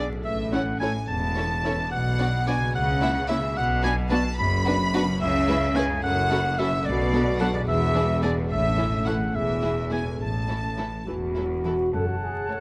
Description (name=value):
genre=cinematic, playful, whimsical film cue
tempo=72 BPM (dotted quarters)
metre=6/8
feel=straight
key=A major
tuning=A4 = 440 Hz
part: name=clear chamber violin section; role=melody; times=0.0-12.6 s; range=D5 to B5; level=-36 LUFS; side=equal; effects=none
part: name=clear clarinet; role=second line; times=0.0-12.6 s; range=C#5 to B5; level=-31 LUFS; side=equal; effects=none
part: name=rich chamber violin section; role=second line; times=0.0-12.6 s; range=D4 to E5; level=-36 LUFS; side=equal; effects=none
part: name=rich studio viola section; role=accompaniment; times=0.0-12.6 s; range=E3 to E4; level=-33 LUFS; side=equal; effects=none
part: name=concert harp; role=arpeggios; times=0.0-12.6 s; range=E2 to D5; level=-36 LUFS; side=equal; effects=none
part: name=clear chamber cello section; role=bass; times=0.0-12.6 s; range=E2 to C#3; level=-31 LUFS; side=equal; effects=none
part: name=rich chamber double bass section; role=bass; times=0.0-12.6 s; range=E1 to C#2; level=-31 LUFS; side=equal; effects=none
part: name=mellow French horn section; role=sustained chords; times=11.1-12.6 s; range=F#4 to A4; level=-30 LUFS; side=equal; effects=none
part: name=clear oboe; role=second line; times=11.9-12.6 s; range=F#5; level=-36 LUFS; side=equal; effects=none
part: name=small flute group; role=second line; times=11.9-12.6 s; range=A5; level=-39 LUFS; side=equal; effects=none
room=light reverb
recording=close, detailed microphones, vinyl crackle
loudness=-25 LUFS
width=mono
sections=0.0-11.9 A section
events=none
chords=0.2 A; 1.9 Bm; 2.7 A#dim/C#; 3.6 Bm; 5.2 C#m7; 6.0 F#m7; 6.9 Bm7; 7.7 E7; 8.5 A; 9.3 E; 10.2 A; 11.9 F#m